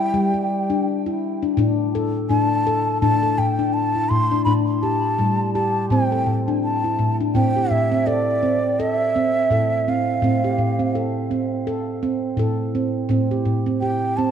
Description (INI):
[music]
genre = world meditative, meditative tuned percussion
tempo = 83 BPM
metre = 4/4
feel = swing 56% on 16ths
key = unclear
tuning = A4 = 440 Hz
[part]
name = breathy bansuri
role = melody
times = 0.0-14.3 s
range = D5 to C6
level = -22 LUFS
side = right 1 dB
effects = tape echo
[part]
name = handpan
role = arpeggios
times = 0.0-14.3 s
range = A2 to A4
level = -20 LUFS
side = left 1 dB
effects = none
[sound]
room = wet echo chamber reverb, RT60 1.6 s, studio ambience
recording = cassette tape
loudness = -18 LUFS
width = side -8 dB against mid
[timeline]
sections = 0.0-7.4 A section; 7.4-14.3 B section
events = none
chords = 0.0 Em; 1.6 D5/A; 4.5 G5/A; 5.9 Am; 7.4 C5/A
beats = 0.13 0.86 | 1.58 2.30 3.02 3.75 | 4.47 5.19 5.91 6.63 | 7.35 8.07 8.79 9.51 | 10.23 10.95 11.67 12.38 | 13.10 13.82